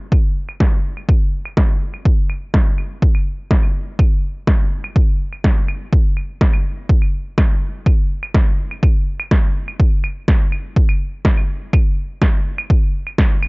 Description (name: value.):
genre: techno.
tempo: 124 BPM.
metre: 4/4.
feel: straight.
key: none.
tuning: none.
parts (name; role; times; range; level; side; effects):
electronic claves and snare drum; drums; 0.1-13.5 s; none; -23 LUFS; equal; low-pass filter on perc, low-pass filter on snare, low-pass filter on room.
electronic kick drum; drums; 0.1-13.3 s; none; -14 LUFS; equal; overdrive.
room: little or no reverb.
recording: dry, gritty hardware recording, cassette tape, nothing above 7.5 kHz.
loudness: -15 LUFS.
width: side -30 dB against mid.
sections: 0.0-13.5 A section.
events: none.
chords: none.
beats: 0.12 0.60 | 1.09 1.57 2.06 2.54 | 3.02 3.51 3.99 4.47 | 4.96 5.44 5.93 6.41 | 6.89 7.38 7.86 8.35 | 8.83 9.31 9.80 10.28 | 10.77 11.25 11.73 12.22 | 12.70 13.18.